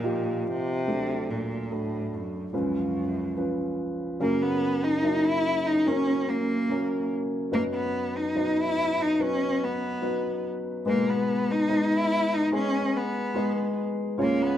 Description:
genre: pop.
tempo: 72 BPM.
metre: 4/4.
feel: straight.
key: G# minor from 4.2 s.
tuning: A4 = 440 Hz.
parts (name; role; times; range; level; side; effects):
rich cello; melody; 0.0-14.6 s; F#2 to E4; -27 LUFS; equal; none.
dark upright piano; accompaniment; 0.0-14.6 s; C#2 to D#5; -27 LUFS; equal; none.
room: moderate stone room reverb, RT60 1.2 s.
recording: band playing live in one room.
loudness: -24 LUFS.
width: side -10 dB against mid.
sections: 0.0-4.2 A section; 4.2-14.6 B section.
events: none.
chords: 0.0 Ebadd9/G; 0.9 D; 2.5 C#7; 4.2 F#; 7.5 B/F#; 10.9 G#m.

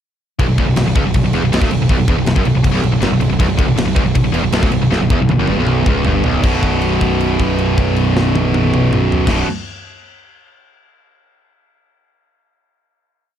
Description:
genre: heavy metal.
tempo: 158 BPM.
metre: 4/4.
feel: straight.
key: B minor.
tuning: A4 = 441 Hz.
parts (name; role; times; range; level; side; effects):
high-gain distorted guitar; riff; 0.4-9.5 s; B1 to B2; -18 LUFS; left 8 dB; distortion.
tight distorted guitar; riff; 0.4-9.5 s; B1 to B2; -18 LUFS; right 8 dB; distortion.
fuzz picked electric bass; bass; 0.4-9.4 s; B0 to G1; -19 LUFS; equal; overdrive.
tight metal drum kit; drums; 0.4-9.4 s; crash cymbal, kick drum, snare drum, toms; -18 LUFS; left 1 dB; none.
room: little or no reverb.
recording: dark, warm production.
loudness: -12 LUFS.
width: side -9 dB against mid.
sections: 0.4-6.4 riff; 6.4-9.5 final chord.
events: drum fill 4.9-6.4; held note 6.4-9.3.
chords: 0.4 Bm; 6.4 B5.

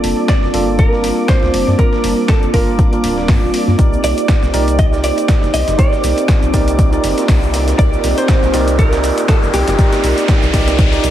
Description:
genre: deep house.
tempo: 120 BPM.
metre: 4/4.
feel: swing 56% on 16ths.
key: unclear.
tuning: A4 = 442 Hz.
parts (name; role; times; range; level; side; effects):
vintage hollow-body jazz guitar; melody; 0.0-11.1 s; G4 to Eb5; -20 LUFS; right 3 dB; analog delay.
warbly tape-like pad; sustained chords; 0.0-11.1 s; G3 to A5; -25 LUFS; equal; chorus, built-in reverb, sidechain pumping.
bright tine electric piano; stabs; 0.0-11.1 s; Bb3 to D5; -19 LUFS; right 1 dB; sidechain pumping, low-pass filter.
rubbery square bass; bass; 0.0-11.1 s; D1 to G2; -19 LUFS; equal; tube saturation, sidechain pumping.
breakbeat sampler-style drum kit; drums; 0.0-11.1 s; hi-hat, snare drum; -30 LUFS; equal; none.
punchy analog drum machine; drums; 0.0-11.1 s; hi-hat, shaker, snare drum; -24 LUFS; equal; high-pass filter on hats, high-pass filter on snare, high-pass filter on perc.
granular cloud pad; texture; 0.0-11.1 s; Bb3 to Bb4; -24 LUFS; left 1 dB; none.
soft string machine; texture; 0.0-11.1 s; D5 to D6; -28 LUFS; right 1 dB; ensemble chorus.
electronic kick drum; drums; 0.3-10.9 s; none; -13 LUFS; equal; none.
riser; sound effects; 5.6-11.1 s; none; -24 LUFS; equal; none.
room: moderate digital room reverb, RT60 1.3 s, digital ambience.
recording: heavily compressed radio sound.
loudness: -11 LUFS.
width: side -12 dB against mid.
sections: 0.0-11.1 A section.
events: build-up 0.0-11.1; filter sweep on tine electric piano 0.0-11.1; riser 5.6-11.1.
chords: 0.0 Gm9; 3.8 Cm9.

